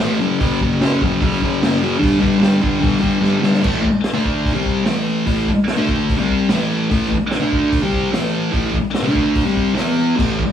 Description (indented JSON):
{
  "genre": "garage rock duo or trio",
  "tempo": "147 BPM",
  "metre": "4/4",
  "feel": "straight",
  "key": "unclear",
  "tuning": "A4 = 441 Hz",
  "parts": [
    { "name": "thick fuzz guitar", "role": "riff", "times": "0.0-10.4 s", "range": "F#2 to E4", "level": "-16 LUFS", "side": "left 1 dB", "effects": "distortion" },
    { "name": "vintage drum kit", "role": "drums", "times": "0.0-10.5 s", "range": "crash cymbal, hi-hat, kick drum, snare drum", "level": "-22 LUFS", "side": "equal", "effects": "none" }
  ],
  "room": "moderate small room reverb, RT60 0.5 s",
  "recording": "band playing live in one room, small room reverb",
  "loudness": "-15 LUFS",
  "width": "side -9 dB against mid",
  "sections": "0.0-3.7 A section; 3.7-10.2 B section",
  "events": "drum fill 3.2-3.7",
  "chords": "0.2 F#5; 2.0 G5; 3.7 A5; 4.2 D5; 4.6 A5; 5.8 D5; 6.2 A5; 7.4 D5; 7.8 A5; 9.1 D5; 9.5 C5; 9.8 E5"
}